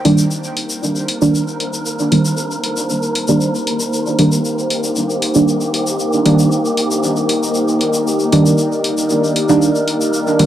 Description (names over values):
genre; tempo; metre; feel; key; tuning
dub techno; 116 BPM; 4/4; straight; C minor; A4 = 440 Hz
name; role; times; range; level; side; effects
dark analog pad; sustained chords; 0.3-10.5 s; Eb4 to D5; -19 LUFS; equal; chorus
deep mellow chord stab; stabs; 0.0-10.5 s; Eb3 to D4; -16 LUFS; right 1 dB; chorus, phaser, dub echo
wind-like tuned noise texture; texture; 0.5-10.5 s; Bb3 to Bb4; -22 LUFS; left 1 dB; built-in reverb
electronic hi-hat; drums; 0.1-10.5 s; none; -20 LUFS; left 1 dB; none
tube shaker; percussion; 0.2-10.4 s; none; -25 LUFS; left 3 dB; none
room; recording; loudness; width
light reverb; dry, gritty hardware recording, transformer saturation, vinyl crackle; -14 LUFS; side -11 dB against mid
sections
0.0-10.5 A section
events
none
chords
0.0 Cm7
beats
0.31 0.82 1.34 | 1.86 2.38 2.89 3.41 | 3.93 4.45 4.96 5.48 | 6.00 6.51 7.03 7.55 | 8.07 8.58 9.10 9.62 | 10.13